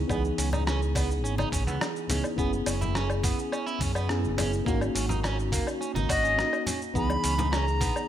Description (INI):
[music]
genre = sunset chillout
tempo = 105 BPM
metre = 4/4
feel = straight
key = C# dorian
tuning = A4 = 440 Hz
[part]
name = mellow FM electric piano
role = accompaniment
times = 0.0-8.1 s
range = E3 to G#4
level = -31 LUFS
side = equal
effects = chorus, auto-pan, tape echo
[part]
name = electric guitar at the edge of break-up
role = arpeggios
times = 0.1-7.9 s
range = A#3 to F#4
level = -34 LUFS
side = right 5 dB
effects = tape echo
[part]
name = overdriven fingered electric bass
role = bass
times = 0.1-7.9 s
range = F#1 to F#2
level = -29 LUFS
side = equal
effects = none
[part]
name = dusty soul sampler-style drum kit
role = drums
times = 0.1-8.1 s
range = hi-hat, rim click, shaker, woodblock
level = -33 LUFS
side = left 1 dB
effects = studio ambience
[part]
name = electronic kick drum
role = drums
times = 0.1-7.9 s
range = none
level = -31 LUFS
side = equal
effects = studio ambience
[part]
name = congas and bongos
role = percussion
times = 0.5-7.9 s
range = none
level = -37 LUFS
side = left 3 dB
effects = none
[part]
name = bright wooden flute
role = melody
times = 6.1-8.1 s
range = D#5 to B5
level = -27 LUFS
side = left 1 dB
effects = tape echo
[sound]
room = light reverb, digital ambience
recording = none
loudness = -25 LUFS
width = side -11 dB against mid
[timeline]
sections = 0.0-7.0 A section; 7.0-8.1 B section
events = break 6.4-7.0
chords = 0.0 C#m9; 2.4 F#7sus4; 4.7 G#9sus4; 7.0 C#m9